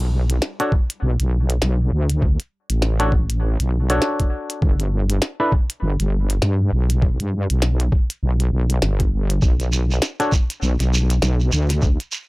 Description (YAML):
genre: glitch hop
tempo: 100 BPM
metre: 4/4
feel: swing 59% on 16ths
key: B minor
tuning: A4 = 440 Hz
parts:
  - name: wobble bass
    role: bass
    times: 0.0-12.0 s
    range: G1 to G2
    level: -18 LUFS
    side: equal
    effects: chorus, tube saturation
  - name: glitchy drum kit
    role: drums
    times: 0.0-12.1 s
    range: hi-hat, snare drum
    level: -24 LUFS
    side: equal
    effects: overdrive
  - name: clav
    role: stabs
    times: 0.6-5.5, 10.2-10.3 s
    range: D4 to C#5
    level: -22 LUFS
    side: equal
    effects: vintage 12-bit sampler grit, sidechain pumping, analog delay
  - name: electronic kick drum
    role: drums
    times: 0.7-12.0 s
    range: none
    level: -17 LUFS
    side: equal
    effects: overdrive
  - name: shekere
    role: percussion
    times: 9.4-12.3 s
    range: none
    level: -28 LUFS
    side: right 3 dB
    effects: none
room: little or no reverb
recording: dry, gritty hardware recording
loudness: -17 LUFS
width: side -22 dB against mid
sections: 0.0-12.3 A section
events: none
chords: 0.0 Bm9; 4.6 G; 9.4 Bm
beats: 0.42 1.02 1.62 | 2.22 2.82 3.42 4.02 | 4.62 5.22 5.82 6.42 | 7.02 7.62 8.22 8.82 | 9.42 10.02 10.62 11.22 | 11.82